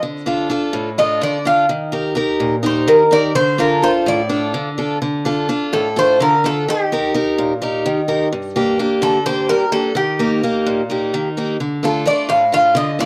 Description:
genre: greek folk, Greek bouzouki band.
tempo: 254 BPM (eighths).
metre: 7/8.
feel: straight.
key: D phrygian.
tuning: A4 = 436 Hz.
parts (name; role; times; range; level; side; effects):
picked acoustic archtop guitar; accompaniment; 0.0-13.1 s; G2 to Bb4; -20 LUFS; equal; none.
Greek bouzouki; melody; 1.0-13.1 s; G4 to F5; -18 LUFS; equal; none.
room: little or no reverb.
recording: dry, close 1970s-style studio recording.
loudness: -17 LUFS.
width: mono.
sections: 0.0-5.0 A section; 5.0-13.1 B section.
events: none.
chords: 0.0 Dm; 1.7 Eb; 3.4 Dm; 6.7 Eb; 8.3 Gm; 10.0 Eb; 11.6 Dm.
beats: | 0.03 0.27 0.51 0.75 0.98 1.22 1.46 | 1.70 1.94 2.17 2.41 2.65 2.89 3.13 | 3.36 3.60 3.84 4.08 4.31 4.55 4.79 | 5.02 5.26 5.50 5.73 5.97 6.20 6.44 | 6.67 6.91 7.15 7.38 7.62 7.85 8.09 | 8.32 8.56 8.79 9.03 9.26 9.49 9.73 | 9.96 10.20 10.43 10.66 10.90 11.13 11.37 | 11.60 11.83 12.06 12.30 12.53 12.76 12.99.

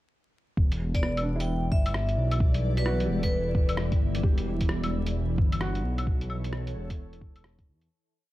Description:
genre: future garage.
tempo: 131 BPM.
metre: 4/4.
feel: swing 63% on 16ths.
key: E dorian.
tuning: A4 = 439 Hz.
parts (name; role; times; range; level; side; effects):
ethereal airy pad; sustained chords; 1.6-7.9 s; E3 to D5; -35 LUFS; equal; ensemble chorus, built-in reverb, phaser, sidechain pumping.
dark detuned saw bass; bass; 0.6-7.9 s; E1 to E2; -28 LUFS; equal; sidechain pumping.
electronic kick drum; drums; 0.6-7.7 s; none; -25 LUFS; equal; vintage 12-bit sampler grit, studio reverb.
lo-fi sampler-style drum kit; drums; 0.7-7.9 s; claves, hi-hat, rim click; -36 LUFS; left 1 dB; vintage 12-bit sampler grit, studio reverb.
vibraphone with hard mallets; melody; 0.9-3.7 s; B4 to G5; -33 LUFS; equal; analog delay.
felt-muted upright piano; accompaniment; 1.0-7.9 s; B3 to A4; -39 LUFS; right 2 dB; sidechain pumping, analog delay.
room: light reverb.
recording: dark, warm production, vinyl crackle.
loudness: -24 LUFS.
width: side -16 dB against mid.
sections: 0.6-7.9 groove.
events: fade-out 5.5-7.9.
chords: 0.6 Em7; 4.2 A/E.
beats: | 0.57 1.03 1.49 1.95 | 2.40 2.86 3.32 3.78 | 4.24 4.69 5.15 5.61 | 6.07 6.53 6.98 7.44.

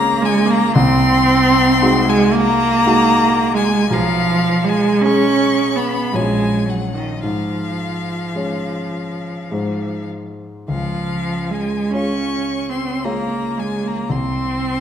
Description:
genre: classical, slow romantic movement for piano trio.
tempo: 47-58 BPM.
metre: 3/4.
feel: rubato.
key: Db major.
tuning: A4 = 440 Hz.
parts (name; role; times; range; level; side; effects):
rich violin; melody; 0.0-14.8 s; Eb5 to Db6; -22 LUFS; left 8 dB; none.
rich cello; second line; 0.0-14.8 s; Eb3 to Db4; -17 LUFS; right 3 dB; none.
dark concert grand piano; accompaniment; 0.0-14.8 s; Bb1 to Db5; -21 LUFS; left 2 dB; none.
room: wet recital hall reverb, RT60 1.4 s.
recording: none.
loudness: -15 LUFS.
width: side -9 dB against mid.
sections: 0.0-14.8 A section.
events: none.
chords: 0.0 Db; 0.8 Ab7/C; 3.9 Db5/Cb; 6.1 Gb/Bb; 7.2 Db/Ab; 9.5 Ab; 10.7 Db; 14.1 N.C..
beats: | 0.75 1.81 2.86 | 3.91 5.04 6.13 | 7.23 8.36 9.51 | 10.68 11.92 13.04 | 14.09.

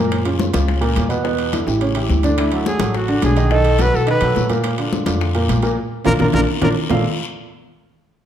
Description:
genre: Afro-Cuban jazz.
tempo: 212 BPM.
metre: 4/4.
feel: straight.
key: unclear.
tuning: A4 = 438 Hz.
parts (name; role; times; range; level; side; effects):
dark baby grand piano; accompaniment; 0.0-7.0 s; Bb2 to F5; -20 LUFS; right 2 dB; none.
upright bass; bass; 0.0-7.0 s; A1 to B2; -20 LUFS; equal; none.
bongos; percussion; 0.1-7.0 s; none; -29 LUFS; left 6 dB; none.
congas; percussion; 0.1-7.0 s; none; -24 LUFS; left 2 dB; none.
guiro; percussion; 0.1-7.0 s; none; -33 LUFS; left 7 dB; none.
timbales; percussion; 0.1-7.0 s; none; -30 LUFS; right 7 dB; none.
breathy trumpet; melody; 2.4-6.7 s; E4 to B4; -21 LUFS; left 1 dB; none.
room: wet large studio reverb, RT60 1.3 s.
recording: dark, warm production.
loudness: -15 LUFS.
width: side -10 dB against mid.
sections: 0.0-6.9 A section; 6.9-8.0 B section.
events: drum fill 1.5-2.4, 5.8-6.9; band accent 5.8-6.9.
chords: 0.1 Gbmaj7; 1.2 Em7; 1.8 A7; 2.4 Dadd9; 3.5 B7; 4.6 Bb; 6.9 Bbmaj7.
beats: | 0.11 0.40 0.68 0.96 | 1.25 1.53 1.81 2.10 | 2.38 2.66 2.95 3.23 | 3.51 3.79 4.08 4.36 | 4.64 4.93 5.21 5.49 | 5.77 6.06 6.34 6.62 | 6.90.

